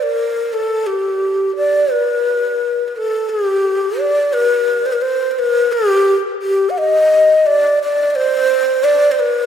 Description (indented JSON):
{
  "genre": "turkish",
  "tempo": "free time",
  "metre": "none",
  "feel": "none",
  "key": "unclear",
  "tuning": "A4 = 439 Hz",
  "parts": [
    { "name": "breathy mellow ney", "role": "solo", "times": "0.0-9.5 s", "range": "G4 to F#5", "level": "-13 LUFS", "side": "equal", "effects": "none" }
  ],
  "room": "wet church reverb, RT60 2.8 s",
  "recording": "recorded in a church or concert hall",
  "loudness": "-13 LUFS",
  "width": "side -8 dB against mid",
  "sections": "0.0-1.9 A section; 1.9-9.5 B section",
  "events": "none",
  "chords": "none"
}